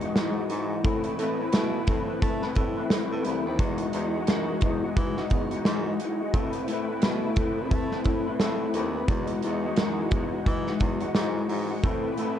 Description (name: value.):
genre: indie pop, bedroom pop.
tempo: 87 BPM.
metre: 4/4.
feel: swing 60% on 16ths.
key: E major.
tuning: A4 = 440 Hz.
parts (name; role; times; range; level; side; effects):
electric guitar through a small old amp; accompaniment; 0.0-12.4 s; E3 to B4; -29 LUFS; left 3 dB; ensemble chorus, vibrato effect.
lush unison pad; sustained chords; 0.0-12.4 s; E3 to B4; -35 LUFS; right 1 dB; chorus.
breathy baritone saxophone; bass; 0.0-12.4 s; C2 to A3; -32 LUFS; equal; none.
loose indie drum kit; drums; 0.0-12.4 s; hi-hat, kick drum, snare drum; -27 LUFS; equal; vintage 12-bit sampler grit.
room: light reverb.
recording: dark, warm production.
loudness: -24 LUFS.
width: side -10 dB against mid.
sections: 0.0-12.4 A section.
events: none.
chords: 0.0 Emaj9; 0.8 Amadd9; 3.6 Emaj9; 6.3 Amadd9; 9.1 Emaj9; 11.8 Amadd9.